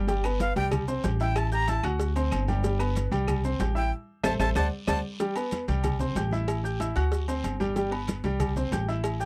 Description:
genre	latin, salsa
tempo	188 BPM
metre	4/4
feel	straight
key	G major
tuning	A4 = 442 Hz
part	clear baby grand piano	accompaniment	0.0-9.3 s	G3 to G6	-33 LUFS	equal	none
part	upright bass	bass	0.0-9.3 s	G1 to D2	-30 LUFS	equal	none
part	congas	percussion	0.1-9.3 s	none	-37 LUFS	equal	none
part	cowbell	percussion	0.1-9.2 s	none	-39 LUFS	equal	none
part	guiro	percussion	0.1-9.3 s	none	-50 LUFS	equal	none
part	maracas	percussion	0.1-9.3 s	none	-50 LUFS	equal	none
part	agogo bells and timbales	percussion	0.2-9.2 s	none	-40 LUFS	equal	none
part	claves	percussion	0.2-5.0 s	none	-44 LUFS	equal	none
part	breathy bright jazz flute	melody	0.4-5.0 s	F5 to Bb5	-31 LUFS	equal	none
room	little or no reverb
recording	dry, close 1970s-style studio recording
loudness	-27 LUFS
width	mono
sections	0.0-5.2 A section; 5.2-9.3 B section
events	flute solo 0.0-5.2; band accent 3.9-5.2; drum fill 4.2-5.2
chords	0.1 G; 0.7 C; 1.4 A5; 2.0 D7; 2.6 G; 3.3 C; 3.9 Am; 4.6 D7; 5.2 G; 5.8 C; 6.5 A5; 7.1 D7; 7.8 G; 8.4 C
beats	| 0.08 0.40 0.72 1.04 | 1.36 1.68 2.00 2.32 | 2.64 2.96 3.28 3.60 | 3.92 4.24 4.56 4.88 | 5.20 5.52 5.84 6.16 | 6.48 6.80 7.12 7.44 | 7.76 8.08 8.40 8.72 | 9.04

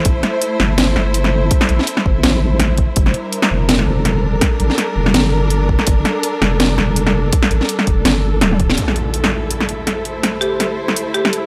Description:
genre	half-time drum and bass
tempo	165 BPM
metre	4/4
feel	swing 56% on 16ths, half-time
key	A phrygian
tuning	A4 = 441 Hz
part	warm symphonic string section	sustained chords	0.0-11.5 s	G3 to C5	-23 LUFS	equal	sidechain pumping
part	deep soft wobble bass	bass	0.1-8.8 s	D1 to Bb1	-19 LUFS	equal	chorus
part	drum and bass drum kit	drums	0.1-11.4 s	hi-hat, snare drum, toms	-19 LUFS	equal	overdrive
part	electronic kick drum	drums	0.1-8.7 s	none	-18 LUFS	equal	none
part	impact	sound effects	8.8-10.2 s	none	-27 LUFS	equal	none
part	buzzing marimba with hard mallets	melody	10.4-11.5 s	G4	-22 LUFS	equal	analog delay
room	light reverb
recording	dry, gritty hardware recording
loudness	-16 LUFS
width	mono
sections	0.0-8.8 A section; 8.8-11.5 B section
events	drum fill 8.4-8.8; impact 8.8-10.2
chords	0.0 Am; 3.0 Gm; 8.8 Am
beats	| 0.05 0.42 0.78 1.15 | 1.51 1.87 2.24 2.60 | 2.96 3.33 3.69 4.05 | 4.42 4.78 5.14 5.51 | 5.87 6.24 6.60 6.96 | 7.33 7.69 8.05 8.42 | 8.78 9.14 9.51 9.87 | 10.24 10.60 10.96 11.33

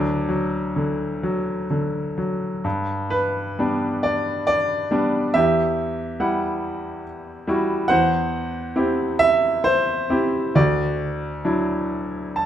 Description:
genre	classical, lyrical solo piano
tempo	42-48 BPM (dotted quarters)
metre	6/8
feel	rubato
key	G major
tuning	A4 = 441 Hz
part	clear grand piano	solo	0.0-12.5 s	D2 to A5	-20 LUFS	equal	none
room	moderate recital hall reverb, RT60 1.4 s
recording	none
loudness	-20 LUFS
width	side -10 dB against mid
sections	0.0-2.7 A section; 2.7-12.5 B section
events	grand piano fill 11.9-12.5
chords	0.0 D; 2.7 G; 5.4 Emadd9; 7.9 C/E; 10.6 Dadd9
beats	1.22 | 2.65 4.04 | 5.37 6.65 | 7.91 9.22 | 10.57 11.92

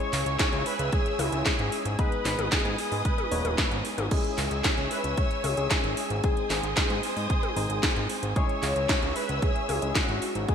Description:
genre	italo disco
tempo	113 BPM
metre	4/4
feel	straight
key	C# minor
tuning	A4 = 438 Hz
part	wide unison lead	melody	0.0-10.5 s	E4 to C#5	-32 LUFS	left 1 dB	wide subtle chorus, ping-pong delay
part	warm studio string section	sustained chords	0.0-10.5 s	B4 to E6	-34 LUFS	right 2 dB	none
part	tine electric piano	stabs	0.0-10.5 s	G#3 to C#5	-35 LUFS	left 3 dB	medium stereo tremolo, digital delay
part	house drum kit	drums	0.0-10.5 s	crash cymbal, handclaps, hi-hat, snare drum, toms	-30 LUFS	equal	studio ambience, gated reverb
part	fat analog bass	bass	0.1-10.5 s	D#1 to G#2	-32 LUFS	equal	none
part	electronic kick drum	drums	0.4-10.5 s	none	-28 LUFS	equal	studio ambience
room	moderate lush hall reverb, RT60 1.9 s, digital ambience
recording	bright 1980s-style digital production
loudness	-24 LUFS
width	side -8 dB against mid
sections	0.0-10.5 A section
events	none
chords	0.0 C#m; 2.0 G#m; 4.1 C#m; 6.2 G#; 8.4 C#m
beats	0.40 0.93 1.46 | 1.99 2.52 3.05 3.58 | 4.11 4.64 5.17 5.71 | 6.24 6.77 7.30 7.83 | 8.36 8.89 9.42 9.95 | 10.48

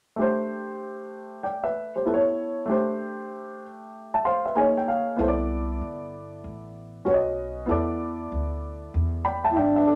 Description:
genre	hip hop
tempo	96 BPM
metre	4/4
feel	swing 65% on 16ths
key	A minor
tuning	A4 = 440 Hz
part	dark upright piano	accompaniment	0.2-10.0 s	A3 to C6	-28 LUFS	equal	none
part	upright bass	bass	5.2-10.0 s	G1 to E2	-34 LUFS	equal	none
part	dark trombone	melody	9.5-10.0 s	D4 to E4	-22 LUFS	equal	none
room	moderate studio reverb, RT60 0.5 s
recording	none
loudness	-26 LUFS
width	mono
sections	0.2-10.0 A section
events	upright piano fill 3.9-5.2, 8.9-10.0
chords	0.2 Am7; 2.1 A; 2.7 D5; 4.6 C#69; 5.2 C69; 7.1 B; 7.7 E5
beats	| 0.18 0.81 1.43 2.06 | 2.68 3.31 3.93 4.56 | 5.18 5.81 6.43 7.06 | 7.68 8.31 8.93 9.56

